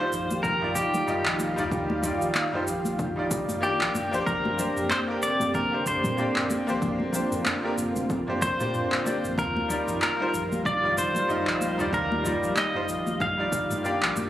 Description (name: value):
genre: sunset chillout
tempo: 94 BPM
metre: 4/4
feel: swing 57% on 16ths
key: unclear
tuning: A4 = 440 Hz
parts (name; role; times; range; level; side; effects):
- pedal steel guitar; melody; 0.0-14.1 s; G4 to F5; -28 LUFS; equal; tape echo
- bright grand piano; accompaniment; 0.0-14.3 s; G3 to Eb5; -30 LUFS; left 1 dB; auto-pan, tape echo
- lush unison pad; sustained chords; 0.0-14.3 s; D3 to F5; -30 LUFS; right 1 dB; chorus
- round analog bass; bass; 0.1-14.1 s; Eb1 to Bb2; -37 LUFS; equal; none
- deep house drum kit; drums; 0.1-14.3 s; cabasa, handclaps, toms; -31 LUFS; equal; none
- congas; percussion; 0.3-14.3 s; none; -35 LUFS; left 1 dB; none
- electronic kick drum; drums; 0.4-13.7 s; none; -32 LUFS; equal; none
room: moderate lush hall reverb, RT60 2.1 s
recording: recorded on a phone in the room, club reverb, compression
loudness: -24 LUFS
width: side -12 dB against mid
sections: 0.0-14.3 A section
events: none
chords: 0.0 Ebmaj9; 4.0 Bb69; 9.4 Ebmaj9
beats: 0.44 1.08 | 1.72 2.35 2.99 3.63 | 4.27 4.91 5.54 6.18 | 6.82 7.46 8.10 8.74 | 9.38 10.01 10.65 11.29 | 11.93 12.57 13.21 13.84